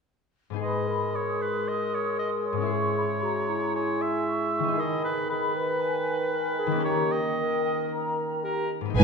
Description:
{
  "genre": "classical, dramatic, fast romantic movement for symphony orchestra",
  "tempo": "115 BPM",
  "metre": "4/4",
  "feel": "straight",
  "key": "G# minor",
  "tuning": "A4 = 443 Hz",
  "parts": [
    { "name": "concert harp", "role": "arpeggios", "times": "0.5-9.0 s", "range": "G#2 to G#4", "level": "-32 LUFS", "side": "left 5 dB", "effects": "none" },
    { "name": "clear oboe", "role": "second line", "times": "0.6-8.7 s", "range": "A#4 to E5", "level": "-32 LUFS", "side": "right 2 dB", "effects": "none" },
    { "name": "mellow clarinet", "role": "second line", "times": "0.6-8.7 s", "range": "E4 to B4", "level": "-31 LUFS", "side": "left 2 dB", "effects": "none" },
    { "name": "mellow hollow flute section", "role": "second line", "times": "0.6-9.0 s", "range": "D#5 to D#6", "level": "-33 LUFS", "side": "left 1 dB", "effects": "none" },
    { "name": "warm bassoon", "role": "accompaniment", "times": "0.6-8.7 s", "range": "D#3 to G#3", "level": "-31 LUFS", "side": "right 2 dB", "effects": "none" },
    { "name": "warm symphonic violin section", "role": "melody", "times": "9.0 s", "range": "G#5", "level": "-25 LUFS", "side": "left 8 dB", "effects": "none" },
    { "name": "rich symphonic violin section", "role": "second line", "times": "9.0 s", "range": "B3 to B4", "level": "-26 LUFS", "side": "right 1 dB", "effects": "none" },
    { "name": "warm symphonic viola section", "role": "accompaniment", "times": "9.0 s", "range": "B4", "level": "-24 LUFS", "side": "equal", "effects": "none" },
    { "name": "rich symphonic cello section", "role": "bass", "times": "9.0 s", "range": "G#2", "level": "-13 LUFS", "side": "right 4 dB", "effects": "none" },
    { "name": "warm chamber double bass section", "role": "bass", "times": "9.0 s", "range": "G#1", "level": "-21 LUFS", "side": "right 3 dB", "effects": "none" }
  ],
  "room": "wet concert hall reverb, RT60 1.9 s",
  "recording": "minimal, uncompressed stereo recording",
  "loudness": "-25 LUFS",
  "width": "side -5 dB against mid",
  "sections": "0.6-9.0 A section",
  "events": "none",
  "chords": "0.6 G#m; 4.8 G#m/D#; 6.9 D#7"
}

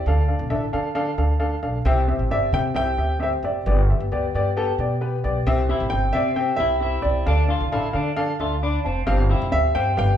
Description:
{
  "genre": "soul",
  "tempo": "133 BPM",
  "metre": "4/4",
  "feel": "straight",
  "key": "C major",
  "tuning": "A4 = 440 Hz",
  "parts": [
    { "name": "warm concert grand piano", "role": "melody", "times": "0.0-10.2 s", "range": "D5 to G5", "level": "-24 LUFS", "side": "right 1 dB", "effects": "none" },
    { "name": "warm upright piano", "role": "accompaniment", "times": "0.1-10.2 s", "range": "G2 to D6", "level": "-24 LUFS", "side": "left 2 dB", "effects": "none" },
    { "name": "upright bass", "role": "bass", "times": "0.1-10.2 s", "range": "F1 to D3", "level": "-22 LUFS", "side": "equal", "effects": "none" },
    { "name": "electric guitar through a small old amp", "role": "riff", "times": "5.7-9.9 s", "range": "C4 to F4", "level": "-29 LUFS", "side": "left 2 dB", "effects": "none" }
  ],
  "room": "moderate large studio reverb, RT60 0.8 s",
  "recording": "band playing live in one room",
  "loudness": "-19 LUFS",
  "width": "side -10 dB against mid",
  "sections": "0.0-10.2 A section",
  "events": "none",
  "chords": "0.1 Dm; 1.9 C; 3.7 G; 5.5 C; 7.3 Dm; 9.1 G7sus4"
}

